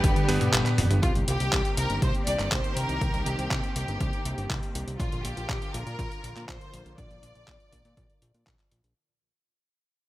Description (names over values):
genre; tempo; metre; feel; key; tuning
italo disco; 121 BPM; 4/4; straight; C minor; A4 = 442 Hz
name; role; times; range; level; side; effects
rich studio violin section; melody; 0.0-8.7 s; F4 to D5; -34 LUFS; equal; digital delay
rich studio string section; sustained chords; 0.0-8.9 s; D3 to G4; -35 LUFS; equal; low-pass filter
bright electric grand piano; stabs; 0.0-1.0 s; B3 to B4; -31 LUFS; right 2 dB; digital delay
fat analog bass; bass; 0.0-8.9 s; F1 to Bb2; -31 LUFS; equal; none
detuned 8-bit digital drum machine; drums; 0.0-8.9 s; handclaps, hi-hat, toms; -28 LUFS; equal; overdrive
electronic kick drum; drums; 0.0-8.6 s; none; -29 LUFS; equal; none
room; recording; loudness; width
light reverb; none; -24 LUFS; side -16 dB against mid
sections
0.0-1.0 A section; 1.0-9.0 B section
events
drum fill 0.0-1.0; kick drops out 0.5-1.0; fade-out 1.0-9.0; filter sweep on string section 1.0-9.0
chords
0.0 G; 1.0 Cm7; 5.0 Bb